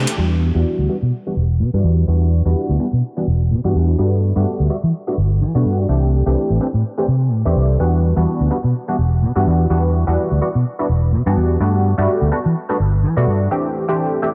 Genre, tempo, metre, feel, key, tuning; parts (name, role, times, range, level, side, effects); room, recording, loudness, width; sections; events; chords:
house; 126 BPM; 4/4; swing 57% on 16ths; E minor; A4 = 441 Hz
funky polysynth comp; accompaniment; 0.0-14.3 s; E3 to G4; -23 LUFS; equal; chorus, phaser, low-pass filter
fingered electric bass; bass; 0.0-13.5 s; E1 to E3; -18 LUFS; equal; low-pass filter
light reverb, digital ambience; -17 LUFS; mono
0.2-14.3 A section
filter sweep 0.2-14.3; break 13.5-14.3
0.2 Em9; 4.0 Gmaj9; 5.9 C69; 7.8 Em9; 11.6 Gmaj9; 13.5 C69